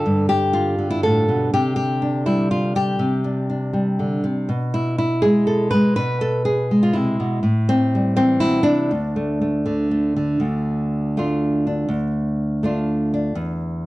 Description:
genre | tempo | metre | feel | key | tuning
folk, solo fingerstyle acoustic guitar | 122 BPM | 3/4 | straight | D dorian | A4 = 440 Hz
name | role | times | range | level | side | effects
nylon-string guitar | solo | 0.0-13.9 s | D2 to B4 | -18 LUFS | equal | none
room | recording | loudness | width
light reverb | dry, close 1970s-style studio recording | -18 LUFS | side -18 dB against mid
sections
0.0-10.4 A section; 10.4-13.9 B section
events
none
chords
0.0 Gadd9; 1.5 Csus2; 4.5 E/B; 7.4 Am7; 8.9 D5; 10.4 Dm

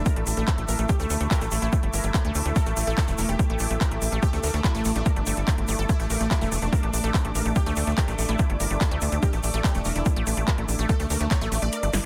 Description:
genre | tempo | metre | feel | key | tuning
psychedelic trance | 144 BPM | 4/4 | straight | unclear | A4 = 445 Hz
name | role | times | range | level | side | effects
supersaw stab | melody | 0.0-12.1 s | A3 to D5 | -36 LUFS | equal | phaser, sidechain pumping, delay
evolving wavetable pad | sustained chords | 0.0-12.1 s | A3 to E4 | -37 LUFS | equal | phaser, built-in reverb, sidechain pumping
tight sequencer bass | bass | 0.0-12.0 s | E1 to D2 | -29 LUFS | equal | none
muted studio string section | texture | 0.0-12.1 s | A3 to D6 | -38 LUFS | equal | sidechain pumping
unison pluck | riff | 0.1-12.0 s | A3 to Bb4 | -36 LUFS | equal | sidechain pumping, delay
electronic kick drum | drums | 0.1-11.4 s | none | -26 LUFS | equal | studio ambience
techno drum kit | drums | 0.1-12.0 s | handclaps, hi-hat, snare drum | -34 LUFS | equal | studio ambience
tube shaker | percussion | 0.1-12.0 s | none | -40 LUFS | equal | none
room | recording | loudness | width
light reverb | dense, heavily limited modern master | -24 LUFS | mono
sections
0.0-12.1 A section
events
kick drops out 11.7-12.1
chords
0.0 A5

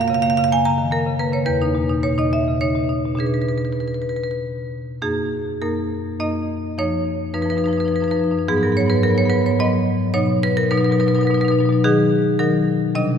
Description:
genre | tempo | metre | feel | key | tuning
classical, contemporary piece for solo marimba | 98-110 BPM | 3/4 | rubato | F# major | A4 = 437 Hz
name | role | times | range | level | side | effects
marimba with medium hard mallets | solo | 0.0-13.2 s | E2 to A#5 | -17 LUFS | equal | none
room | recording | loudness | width
wet church reverb, RT60 3.1 s | minimal, uncompressed stereo recording | -17 LUFS | side -7 dB against mid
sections
0.0-5.0 A section; 5.0-13.2 B section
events
none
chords
0.0 F#maj7; 1.5 E5; 3.2 Bm6; 5.0 F#69; 6.8 C#9/F#; 8.5 G#m7; 10.2 B; 11.8 D#m

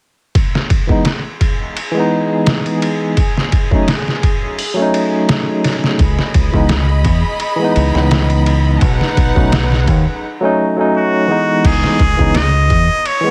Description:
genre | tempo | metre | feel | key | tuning
trip hop | 85 BPM | 4/4 | swing 54% on 16ths | C# minor | A4 = 440 Hz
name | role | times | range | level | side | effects
trip hop sampler-style drum kit | drums | 0.3-13.2 s | crash cymbal, hi-hat, kick drum, ride cymbal, snare drum | -18 LUFS | equal | none
bowed-like drone | texture | 0.8-10.2 s | G#4 | -31 LUFS | equal | built-in reverb
barky tine electric piano | accompaniment | 0.9-13.3 s | E3 to D#4 | -19 LUFS | equal | tremolo, low-pass filter, tape echo
rich studio violin section | sustained chords | 6.0-10.2 s | D#4 to B5 | -24 LUFS | equal | none
deep dub fingered electric bass | bass | 6.0-12.9 s | B1 to E2 | -17 LUFS | equal | tube saturation
trumpet with straight mute | melody | 11.0-13.3 s | F#4 to D#5 | -18 LUFS | equal | none
room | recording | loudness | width
light reverb, digital ambience | heavily compressed radio sound, multiband compression | -14 LUFS | mono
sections
0.3-11.6 A section; 11.6-13.3 B section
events
filter sweep on tine electric piano 0.3-11.6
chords
0.3 Emaj7; 3.2 F#m69; 6.0 C#m9; 8.8 B7; 11.6 C#m9

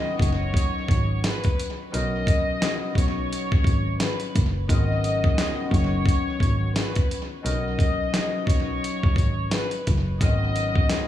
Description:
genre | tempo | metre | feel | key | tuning
hip hop, boom-bap hip-hop | 87 BPM | 4/4 | swing 60% on 16ths | G# minor | A4 = 440 Hz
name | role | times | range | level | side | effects
warm studio violin section | melody | 0.0-11.1 s | B4 to D#5 | -29 LUFS | left 1 dB | high-pass filter, low-pass filter, tape echo
concert harp | accompaniment | 0.0-11.1 s | G#2 to B4 | -30 LUFS | left 5 dB | cassette tape, high-pass filter, low-pass filter, tape echo
warm double bass | bass | 0.2-10.8 s | F#1 to B1 | -26 LUFS | equal | none
dusty soul sampler-style drum kit | drums | 0.2-11.1 s | hi-hat, kick drum, snare drum | -23 LUFS | equal | none
room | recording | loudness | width
studio ambience | echo-heavy mix, small room reverb | -21 LUFS | side -12 dB against mid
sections
0.0-11.1 A section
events
none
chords
0.0 G#m11

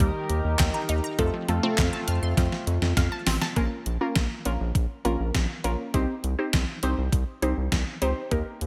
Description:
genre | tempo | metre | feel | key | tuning
synth-pop | 101 BPM | 4/4 | straight | Bb dorian | A4 = 440 Hz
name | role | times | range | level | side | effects
warbly dusty pluck | accompaniment | 0.0-8.6 s | A3 to C5 | -31 LUFS | equal | chorus, phaser
chorused pulse-width pad | sustained chords | 0.0-3.5 s | Eb3 to Bb4 | -34 LUFS | equal | lush chorus
resonant blip pluck | arpeggios | 0.0-3.5 s | F3 to F6 | -35 LUFS | equal | phaser, digital delay
round analog bass | bass | 0.0-8.7 s | A1 to F2 | -29 LUFS | equal | none
gated 80s digital drum machine | drums | 0.0-8.7 s | handclaps, hi-hat, kick drum, snare drum | -28 LUFS | equal | gated reverb, gated reverb snare
room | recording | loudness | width
light reverb, digital ambience | none | -26 LUFS | mono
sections
0.0-3.6 A section; 3.6-8.7 B section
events
drum fill 2.4-3.6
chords
0.0 Eb; 1.2 F; 3.6 Bbm; 5.9 Cm

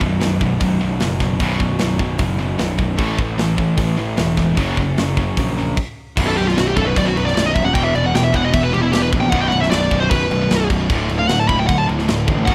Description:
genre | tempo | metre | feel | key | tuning
heavy metal | 152 BPM | 4/4 | straight | B minor from 6.2 s | A4 = 438 Hz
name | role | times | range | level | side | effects
distorted electric guitar | riff | 0.0-12.5 s | B1 to A3 | -25 LUFS | equal | distortion
heavy high-gain guitar | riff | 0.0-12.5 s | B1 to A3 | -25 LUFS | equal | distortion
scooped high-gain guitar | riff | 0.0-5.8, 12.5 s | B1 to A3 | -31 LUFS | equal | none
fuzz picked electric bass | bass | 0.0-12.5 s | B0 to A#1 | -24 LUFS | equal | overdrive
tight metal drum kit | drums | 0.0-12.5 s | crash cymbal, hi-hat, kick drum, snare drum | -24 LUFS | equal | none
high-gain lead guitar | melody | 6.3-12.5 s | E4 to B5 | -22 LUFS | equal | distortion
room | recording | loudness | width
small room ambience | rough home demo mix | -18 LUFS | mono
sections
0.0-6.2 A section; 6.2-12.5 B section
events
stop 5.8-6.2; lead electric guitar solo 6.2-12.5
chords
0.0 B5; 3.0 A5; 4.6 F#; 6.2 B5; 7.7 E5; 9.3 B5; 10.9 D5

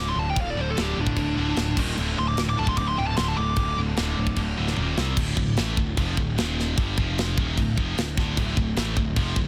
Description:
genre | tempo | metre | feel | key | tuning
heavy metal | 150 BPM | 4/4 | straight | D minor | A4 = 440 Hz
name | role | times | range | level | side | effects
high-gain lead guitar | melody | 0.0-3.8 s | D4 to D6 | -31 LUFS | equal | distortion, tape echo
distorted electric guitar | riff | 0.0-5.2 s | D2 to C4 | -35 LUFS | equal | overdrive
heavy high-gain guitar | riff | 0.0-9.5 s | D2 to C4 | -32 LUFS | equal | distortion
fuzz picked electric bass | bass | 0.0-9.5 s | D1 to C2 | -30 LUFS | equal | overdrive
tight metal drum kit | drums | 0.4-9.5 s | crash cymbal, kick drum, snare drum, toms | -30 LUFS | equal | soft clipping on kick
room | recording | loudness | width
little or no reverb | dense, heavily limited modern master | -25 LUFS | mono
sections
0.0-5.2 A section; 5.2-9.5 B section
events
lead electric guitar solo 0.0-5.2; drum fill 4.8-5.2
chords
0.0 D5; 1.8 Eb5; 2.0 D5; 4.8 Eb5; 5.0 C5; 5.2 Dm; 6.4 Eb5; 6.8 G5; 7.0 F5; 7.4 Dm

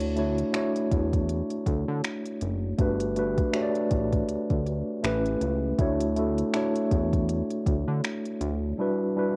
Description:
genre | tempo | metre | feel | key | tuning
contemporary R&B | 80 BPM | 4/4 | swing 58% on 16ths | D major | A4 = 439 Hz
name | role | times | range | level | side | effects
mellow tine electric piano | accompaniment | 0.0-9.4 s | G3 to D5 | -29 LUFS | equal | cassette tape
fat analog bass | bass | 0.0-8.7 s | F#1 to D3 | -32 LUFS | equal | none
smooth R&B drum kit | drums | 0.0-8.6 s | finger snaps, hi-hat, kick drum | -31 LUFS | equal | overdrive, cassette tape
room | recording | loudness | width
little or no reverb | home recording on cassette | -27 LUFS | mono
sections
0.0-9.4 A section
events
none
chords
0.0 Dmaj7; 2.8 Gmaj9; 5.0 A7; 5.8 Dmaj7; 8.8 Em9

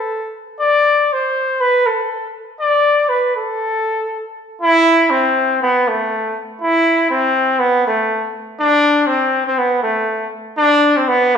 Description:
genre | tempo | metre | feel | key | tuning
alpine folk | 121 BPM | 2/4 | straight | A minor | A4 = 442 Hz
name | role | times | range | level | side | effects
dark trumpet | solo | 0.0-11.4 s | A3 to D5 | -14 LUFS | equal | none
room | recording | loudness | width
wet recital hall reverb, RT60 1.7 s | recorded in a church or concert hall | -13 LUFS | side -7 dB against mid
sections
0.0-4.6 A section; 4.6-11.4 A section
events
none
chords
none

